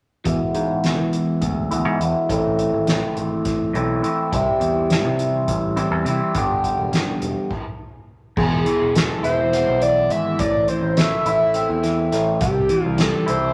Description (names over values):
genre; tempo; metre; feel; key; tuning
psychedelic rock; 208 BPM (eighths); 7/8; straight; unclear; A4 = 439 Hz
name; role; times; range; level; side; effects
electric guitar through a small old amp; riff; 0.2-13.5 s; E2 to G4; -23 LUFS; equal; phaser, low-pass filter
picked electric bass; bass; 0.3-13.5 s; E1 to E3; -28 LUFS; equal; none
soft-mallet drum kit; drums; 0.3-13.4 s; crash cymbal, hi-hat, kick drum, snare drum; -27 LUFS; equal; none
overdriven synth lead; melody; 8.4-13.5 s; G4 to E5; -24 LUFS; equal; phaser
room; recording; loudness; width
moderate studio reverb, RT60 0.6 s; none; -20 LUFS; mono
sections
0.3-8.4 A section; 8.4-13.5 B section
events
filter sweep on clean electric guitar 0.3-8.4; stop 7.5-8.4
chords
0.3 E; 2.3 Am; 4.3 C; 6.3 G; 8.4 E; 10.4 Am; 12.4 C